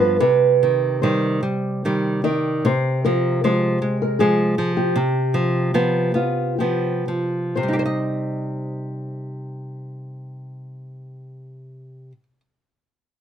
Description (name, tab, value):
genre	romantic duo for nylon-string guitar and classical guitar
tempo	56-80 BPM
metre	3/4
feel	rubato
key	C minor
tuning	A4 = 440 Hz
part	nylon-string guitar	melody	0.0-12.1 s	F4 to D5	-22 LUFS	right 1 dB	none
part	nylon-string guitar	accompaniment	0.0-12.4 s	G2 to Eb5	-21 LUFS	right 1 dB	none
room	light reverb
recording	close, detailed microphones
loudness	-18 LUFS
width	side -9 dB against mid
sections	0.0-2.6 A section; 2.6-7.6 B section; 7.6-13.0 C section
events	slowing down 1.4-7.6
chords	0.2 Cm; 2.6 Fm/C; 5.0 G7/C; 7.6 Cm